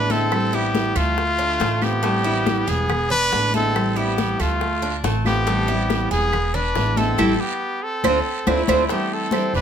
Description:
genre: latin, Cuban son and guajira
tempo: 140 BPM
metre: 4/4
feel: straight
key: A minor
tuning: A4 = 436 Hz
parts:
  - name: clear trumpet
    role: melody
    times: 0.0-9.6 s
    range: E4 to B4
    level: -23 LUFS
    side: left 1 dB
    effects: none
  - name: clear trumpet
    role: second line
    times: 0.0-9.6 s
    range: A3 to D4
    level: -30 LUFS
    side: right 7 dB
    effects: none
  - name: nylon-string guitar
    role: accompaniment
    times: 0.0-9.6 s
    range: D3 to F4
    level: -26 LUFS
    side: left 2 dB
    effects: none
  - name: Cuban tres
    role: arpeggios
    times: 0.0-9.6 s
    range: A3 to A4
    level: -25 LUFS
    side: right 3 dB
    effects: none
  - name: upright bass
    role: bass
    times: 0.0-9.6 s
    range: E1 to D2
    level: -25 LUFS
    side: right 1 dB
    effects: none
  - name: congas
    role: percussion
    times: 0.1-9.6 s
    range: none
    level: -28 LUFS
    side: left 4 dB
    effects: none
  - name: guiro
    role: percussion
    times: 0.1-9.6 s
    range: none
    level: -36 LUFS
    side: right 8 dB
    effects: none
  - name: bongos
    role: percussion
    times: 0.3-9.5 s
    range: none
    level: -30 LUFS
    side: left 6 dB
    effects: none
  - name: claves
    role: percussion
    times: 0.3-9.5 s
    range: none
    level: -33 LUFS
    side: right 5 dB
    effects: none
room: moderate studio reverb, RT60 0.9 s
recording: none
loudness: -18 LUFS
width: side -8 dB against mid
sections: 0.0-8.9 A section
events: band accent 7.2-8.9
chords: 0.3 Am9; 1.2 Dm7; 2.0 Am9; 2.9 E7; 3.8 Am9; 4.6 Dm7; 5.5 Am9; 6.3 E7; 7.2 Am9; 8.0 Dm7; 8.9 Am7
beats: | 0.32 0.74 1.17 1.60 | 2.03 2.46 2.89 3.32 | 3.75 4.18 4.61 5.04 | 5.47 5.90 6.33 6.75 | 7.18 7.61 8.04 8.47 | 8.90 9.33

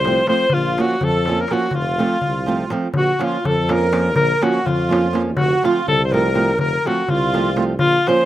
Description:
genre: balkan folk, Balkan wedding band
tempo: 247 BPM (eighths)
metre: 5/8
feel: straight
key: unclear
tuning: A4 = 441 Hz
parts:
  - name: clear alto saxophone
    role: melody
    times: 0.0-8.3 s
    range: F4 to C5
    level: -19 LUFS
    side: left 3 dB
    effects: slapback echo
  - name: accordion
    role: second line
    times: 0.0-8.3 s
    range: F4 to C5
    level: -24 LUFS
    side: right 6 dB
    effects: light tremolo tuning
  - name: warm tuba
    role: bass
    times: 0.0-8.0 s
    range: F1 to F2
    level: -23 LUFS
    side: equal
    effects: none
  - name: darbuka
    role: percussion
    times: 0.0-8.2 s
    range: none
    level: -24 LUFS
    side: left 2 dB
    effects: none
  - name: nylon-string guitar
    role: accompaniment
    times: 0.1-8.2 s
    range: F3 to F4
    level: -21 LUFS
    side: right 4 dB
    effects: none
room: little or no reverb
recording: recorded outdoors, with no room sound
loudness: -16 LUFS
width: side -13 dB against mid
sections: 0.0-2.9 A section; 2.9-8.3 B section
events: none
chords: 0.0 F; 0.5 Bbm; 1.7 F; 2.9 Bbm; 5.4 F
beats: 0.03 0.27 | 0.51 0.76 1.00 1.24 1.48 | 1.73 1.97 2.21 2.45 2.70 | 2.94 3.18 3.42 3.67 3.91 | 4.15 4.40 4.64 4.88 5.12 | 5.37 5.61 5.85 6.09 6.34 | 6.58 6.82 7.07 7.31 7.55 | 7.80 8.04

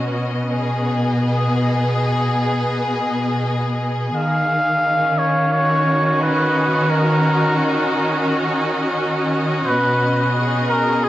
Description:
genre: ambient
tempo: 87 BPM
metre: 4/4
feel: swing 59% on 16ths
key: Eb minor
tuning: A4 = 439 Hz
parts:
  - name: rich studio string section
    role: sustained chords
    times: 0.0-11.1 s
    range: B2 to Eb5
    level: -18 LUFS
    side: equal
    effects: cassette tape
  - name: trumpet with cup mute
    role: melody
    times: 4.1-11.1 s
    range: G#4 to F5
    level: -19 LUFS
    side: equal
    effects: cassette tape, dub echo
room: moderate booth ambience, RT60 0.2 s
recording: home recording on cassette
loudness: -16 LUFS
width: side -14 dB against mid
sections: 0.0-11.1 A section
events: none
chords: 0.0 B6; 4.1 Ebm7; 9.7 B6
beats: 0.01 0.69 | 1.39 2.07 2.76 3.45 | 4.14 4.83 5.52 6.21 | 6.90 7.59 8.28 8.97 | 9.66 10.35 11.04

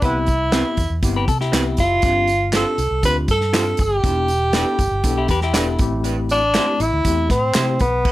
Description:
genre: uptempo 1960s-style soul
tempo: 120 BPM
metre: 4/4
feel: straight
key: unclear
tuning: A4 = 436 Hz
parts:
  - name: mellow tenor saxophone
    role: melody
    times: 0.0-8.1 s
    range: B3 to B4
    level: -19 LUFS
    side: equal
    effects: none
  - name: tine electric piano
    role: accompaniment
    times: 0.0-7.8 s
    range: A3 to A4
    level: -26 LUFS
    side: left 2 dB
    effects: fast stereo tremolo
  - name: vintage muted fingered electric bass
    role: bass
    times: 0.0-8.0 s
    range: E1 to C3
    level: -23 LUFS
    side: equal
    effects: none
  - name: natural country drum kit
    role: drums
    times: 0.0-8.1 s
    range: crash cymbal, hi-hat, kick drum, snare drum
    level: -22 LUFS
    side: equal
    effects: none
  - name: tambourine and handclaps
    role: percussion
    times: 0.3-7.9 s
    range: none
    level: -30 LUFS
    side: left 1 dB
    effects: none
  - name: electric guitar through a small old amp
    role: stabs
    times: 0.5-7.7 s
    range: C4 to C5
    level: -27 LUFS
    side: right 4 dB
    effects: tape echo
  - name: semi-hollow electric guitar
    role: riff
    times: 1.2-2.0, 5.2-5.8 s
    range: E4 to B4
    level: -24 LUFS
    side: left 5 dB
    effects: none
room: light reverb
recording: none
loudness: -16 LUFS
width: side -16 dB against mid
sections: 0.0-8.1 A section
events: none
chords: 0.0 Cmaj7; 2.0 G7sus4; 4.0 Em7; 5.8 Am7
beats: | 0.02 0.53 1.03 1.53 | 2.03 2.53 3.04 3.54 | 4.04 4.54 5.04 5.54 | 6.04 6.55 7.05 7.55 | 8.05

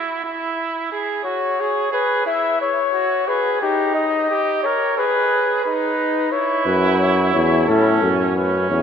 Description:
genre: classical, imitative canzona for brass ensemble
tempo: 89 BPM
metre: 4/4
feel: straight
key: unclear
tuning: A4 = 440 Hz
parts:
  - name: clear trumpet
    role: second line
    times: 0.0-8.8 s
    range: C#4 to A#4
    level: -22 LUFS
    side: right 4 dB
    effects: none
  - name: mellow cornet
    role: melody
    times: 1.2-8.8 s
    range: G4 to E5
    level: -19 LUFS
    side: left 4 dB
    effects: none
  - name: clear bass trombone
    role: bass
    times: 6.7-8.8 s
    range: E2 to A2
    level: -17 LUFS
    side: equal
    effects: none
room: wet church reverb, RT60 3.5 s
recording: none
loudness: -17 LUFS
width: side -7 dB against mid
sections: 0.0-8.8 A section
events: none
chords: 0.0 N.C.; 0.9 G#m; 2.3 E; 3.6 D#; 5.0 G#m; 6.3 C#m; 7.7 A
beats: 0.25 | 0.93 1.60 2.28 2.96 | 3.63 4.31 4.99 5.66 | 6.33 7.01 7.69 8.37

